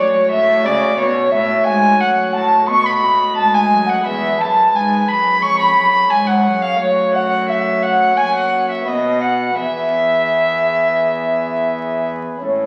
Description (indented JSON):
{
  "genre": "classical, baroque-style sonata movement with continuo",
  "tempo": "87 BPM",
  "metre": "4/4",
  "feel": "straight",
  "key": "E major",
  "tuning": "A4 = 439 Hz",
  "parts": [
    { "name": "warm violin", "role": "melody", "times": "0.0-12.0 s", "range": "C#5 to C#6", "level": "-19 LUFS", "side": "equal", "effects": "none" },
    { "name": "mellow hollow baroque flute", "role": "second line", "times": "0.0-12.7 s", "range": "C#5 to C#6", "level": "-21 LUFS", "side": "equal", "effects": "none" },
    { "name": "chamber organ, principal", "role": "accompaniment", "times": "0.0-12.7 s", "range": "E2 to D#5", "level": "-25 LUFS", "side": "equal", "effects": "none" },
    { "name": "rich cello", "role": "bass", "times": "0.0-12.7 s", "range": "E2 to C#3", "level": "-27 LUFS", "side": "equal", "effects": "none" }
  ],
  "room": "wet recital hall reverb, RT60 1.4 s",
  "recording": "very old 78 rpm record, vinyl crackle",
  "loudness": "-16 LUFS",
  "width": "mono",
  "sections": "0.0-12.4 A section",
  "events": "none",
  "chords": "0.0 F#m; 2.7 B7; 4.1 E; 5.4 C#/E#; 6.8 F#m; 8.2 F#; 8.9 B; 9.6 E",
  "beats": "0.65 | 1.33 2.02 2.69 3.38 | 4.06 4.75 5.43 6.12 | 6.80 7.49 8.18 8.88 | 9.59 10.30 11.02 11.73 | 12.43"
}